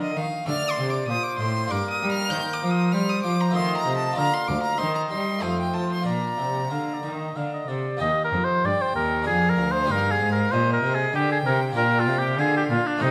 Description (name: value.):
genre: classical, baroque-style sonata movement with continuo.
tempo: 96 BPM.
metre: 3/4.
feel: rubato.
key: Bb major, Eb major from 8.0 s.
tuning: A4 = 444 Hz.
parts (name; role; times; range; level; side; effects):
clear oboe; melody; 0.0-13.1 s; D4 to F5; -28 LUFS; equal; none.
clear violin; second line; 0.0-13.1 s; Eb5 to G6; -32 LUFS; equal; none.
harpsichord; accompaniment; 0.0-13.1 s; D2 to D5; -31 LUFS; equal; none.
rich cello; bass; 0.0-13.1 s; D2 to G3; -29 LUFS; equal; none.
room: wet recital hall reverb, RT60 1.6 s.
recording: none.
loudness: -24 LUFS.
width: mono.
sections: 0.0-8.0 A section; 8.0-13.1 A section.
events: none.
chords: 0.5 D5; 1.7 Gm; 2.3 Cm7/Eb; 3.6 F7/Eb; 4.2 Bb/D; 4.8 Cm/Eb; 5.4 F7; 6.1 Bb; 8.0 Eb; 9.3 Ddim/F; 9.9 Eb/G; 11.8 Bb.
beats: | 0.49 1.09 1.71 | 2.32 2.94 3.56 | 4.17 4.80 5.43 | 6.07 6.71 7.36 | 8.01 8.65 9.27 | 9.90 10.52 11.14 | 11.77 12.39 13.01.